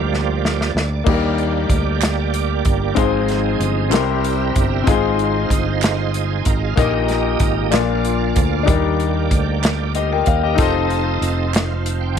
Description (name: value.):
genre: slow gospel.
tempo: 63 BPM (dotted quarters).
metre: 6/8.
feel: straight.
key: Eb major.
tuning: A4 = 440 Hz.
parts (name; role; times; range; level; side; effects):
clear concert grand piano; accompaniment; 0.0-12.2 s; Bb2 to G5; -21 LUFS; left 11 dB; none.
bright tonewheel organ; sustained chords; 0.0-12.2 s; F3 to A5; -23 LUFS; right 14 dB; slow rotary speaker, chorus vibrato.
fingered electric bass; bass; 0.0-12.2 s; F1 to Eb2; -21 LUFS; right 1 dB; none.
natural country drum kit; drums; 0.1-12.2 s; crash cymbal, hi-hat, kick drum, snare drum; -20 LUFS; right 1 dB; none.
group handclap; percussion; 2.0-11.8 s; none; -26 LUFS; right 17 dB; none.
room: studio ambience.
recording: 1960s-style stereo with parts hard left and right.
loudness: -16 LUFS.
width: side -8 dB against mid.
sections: 0.0-1.1 A section; 1.1-12.2 A section.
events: tonewheel organ solo 0.0-1.1; drum fill 0.1-1.1.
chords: 0.0 Ebmaj7; 3.0 Ab6; 3.9 C7; 4.9 Fm7; 6.8 Eb/Bb; 7.7 Bb; 8.7 Ebmaj7; 10.6 F7.